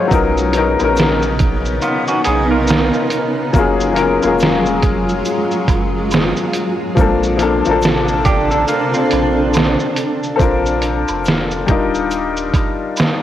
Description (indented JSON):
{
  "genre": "lo-fi hip hop",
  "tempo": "70 BPM",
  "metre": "4/4",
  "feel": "swing 60% on 16ths",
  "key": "Bb major",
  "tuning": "A4 = 442 Hz",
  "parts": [
    { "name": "warm upright piano", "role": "accompaniment", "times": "0.0-13.2 s", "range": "F3 to Ab5", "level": "-17 LUFS", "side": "left 5 dB", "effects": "cassette tape" },
    { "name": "granular cloud pad", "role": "sustained chords", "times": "0.0-10.4 s", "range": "C3 to A4", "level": "-20 LUFS", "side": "right 2 dB", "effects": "built-in reverb, cassette tape" },
    { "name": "soft dub sub bass", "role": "bass", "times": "0.1-12.5 s", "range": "Eb1 to B1", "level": "-23 LUFS", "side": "right 2 dB", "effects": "none" },
    { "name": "lo-fi sampler-style drum kit", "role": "drums", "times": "0.1-13.2 s", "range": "hi-hat, kick drum, shaker, snare drum", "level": "-18 LUFS", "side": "right 2 dB", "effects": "cassette tape" },
    { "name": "egg shaker and woodblock", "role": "percussion", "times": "0.1-13.2 s", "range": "none", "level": "-34 LUFS", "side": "right 7 dB", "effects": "none" },
    { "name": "electric guitar through a small old amp", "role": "second line", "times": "1.8-10.2 s", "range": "B3 to A#4", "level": "-20 LUFS", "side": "right 2 dB", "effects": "cassette tape, analog delay" }
  ],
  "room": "moderate lush hall reverb, RT60 3.2 s",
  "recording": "home recording on cassette",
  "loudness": "-13 LUFS",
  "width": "side -12 dB against mid",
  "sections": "0.0-10.4 A section; 10.4-13.2 B section",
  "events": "kick muted 8.7-10.4",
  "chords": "0.1 Bmaj9; 3.5 Gbmaj9; 7.0 Bbmaj9; 11.7 Ebmaj9",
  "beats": "| 0.11 0.97 1.82 2.68 | 3.54 4.39 5.25 6.11 | 6.97 7.82 8.68 9.54 | 10.39 11.25 12.11 12.97"
}